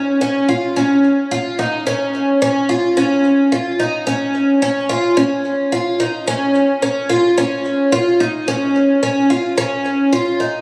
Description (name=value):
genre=dream pop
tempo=109 BPM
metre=4/4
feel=straight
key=Db major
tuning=A4 = 440 Hz
part: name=picked twelve-string acoustic guitar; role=solo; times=0.0-10.6 s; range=Db4 to F4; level=-16 LUFS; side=equal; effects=analog chorus, delay
room=moderate plate reverb, RT60 2.8 s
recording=recorded on a phone in the room, club ambience, compression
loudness=-16 LUFS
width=mono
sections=0.0-5.2 A section; 5.2-10.6 B section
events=none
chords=none